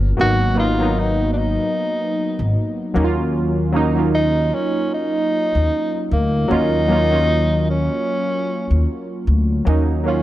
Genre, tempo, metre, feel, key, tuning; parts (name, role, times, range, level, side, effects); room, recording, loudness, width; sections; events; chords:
lo-fi hip hop; 76 BPM; 4/4; swing 57% on 16ths; Eb minor; A4 = 440 Hz
warm analog keys; accompaniment; 0.0-10.2 s; Gb3 to F4; -20 LUFS; right 1 dB; chorus, low-pass filter
upright bass; bass; 0.0-10.2 s; G1 to Eb2; -19 LUFS; equal
breathy tenor saxophone; melody; 0.2-10.2 s; Bb3 to Gb4; -21 LUFS; equal; low-pass filter
light reverb, small room ambience; cassette tape; -16 LUFS; side -14 dB against mid
0.0-6.5 A section; 6.5-10.2 B section
0.2 Abm7; 2.9 Ebm7